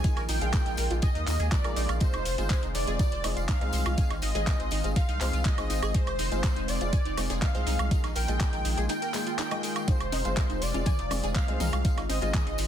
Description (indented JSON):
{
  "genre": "progressive house",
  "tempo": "122 BPM",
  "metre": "4/4",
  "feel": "straight",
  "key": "F dorian",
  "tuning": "A4 = 439 Hz",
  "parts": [
    { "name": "wide unison lead", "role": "melody", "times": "0.0-12.7 s", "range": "C5 to Ab5", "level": "-35 LUFS", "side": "equal", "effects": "analog chorus, ping-pong delay" },
    { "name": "soft supersaw", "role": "second line", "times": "0.0-12.7 s", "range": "C5 to Ab5", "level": "-42 LUFS", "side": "right 1 dB", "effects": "none" },
    { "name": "lush unison pad", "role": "sustained chords", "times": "0.0-12.7 s", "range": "Eb3 to F4", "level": "-39 LUFS", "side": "equal", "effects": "chorus, phaser, vintage 12-bit sampler grit, sidechain pumping" },
    { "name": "wide unison pluck", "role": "arpeggios", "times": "0.0-12.6 s", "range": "Eb4 to Ab5", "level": "-37 LUFS", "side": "right 1 dB", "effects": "ensemble chorus, sidechain pumping, ping-pong delay" },
    { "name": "warm grand piano", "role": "stabs", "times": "0.0-12.7 s", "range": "Ab3 to Ab4", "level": "-37 LUFS", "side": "left 4 dB", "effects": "sidechain pumping, ping-pong delay" },
    { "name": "round analog bass", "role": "bass", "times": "0.0-12.7 s", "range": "F1 to Eb2", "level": "-30 LUFS", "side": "equal", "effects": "sidechain pumping" },
    { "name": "electronic kick drum", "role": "drums", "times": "0.0-12.4 s", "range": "none", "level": "-26 LUFS", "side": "equal", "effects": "overdrive, studio reverb" },
    { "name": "pop drum kit", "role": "drums", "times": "0.0-12.7 s", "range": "handclaps, hi-hat, woodblock", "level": "-35 LUFS", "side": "right 2 dB", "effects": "studio reverb" },
    { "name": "warm soul drum kit", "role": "drums", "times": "0.0-12.7 s", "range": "hi-hat, snare drum", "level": "-44 LUFS", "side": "left 6 dB", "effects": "none" },
    { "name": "tambourine", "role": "percussion", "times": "0.0-12.7 s", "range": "none", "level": "-43 LUFS", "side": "left 5 dB", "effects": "none" },
    { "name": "electronic congas and toms", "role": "percussion", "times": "10.1-12.4 s", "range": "none", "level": "-37 LUFS", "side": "left 4 dB", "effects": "sidechain pumping on perc, studio reverb, sidechain pumping on toms" }
  ],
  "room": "digital ambience",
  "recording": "dense, heavily limited modern master",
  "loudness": "-25 LUFS",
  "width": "side -10 dB against mid",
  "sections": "0.0-12.7 A section",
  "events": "break 8.9-9.9",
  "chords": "0.0 Bb7sus4; 2.0 Fm7; 4.0 Ab6; 5.9 Fm7; 7.9 Bb7sus4; 9.9 Fm7; 11.8 Ab6"
}